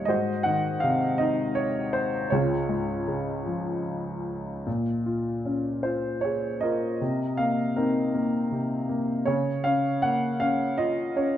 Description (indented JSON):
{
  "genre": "classical, lyrical solo piano",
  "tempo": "79 BPM",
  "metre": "3/4",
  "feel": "rubato",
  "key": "Db major, Bb minor from 4.7 s",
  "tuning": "A4 = 440 Hz",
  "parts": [
    { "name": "warm baby grand piano", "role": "solo", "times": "0.0-11.4 s", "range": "Db2 to Gb5", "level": "-24 LUFS", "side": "equal", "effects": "none" }
  ],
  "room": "moderate recital hall reverb, RT60 1.4 s",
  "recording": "dark, warm production",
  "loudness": "-24 LUFS",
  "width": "side -11 dB against mid",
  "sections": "0.0-4.7 A section; 4.7-11.4 B section",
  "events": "none",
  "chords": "0.1 Ab7; 2.3 Db; 4.7 Bbm7; 7.0 Cm7; 9.3 Bbm7/Db"
}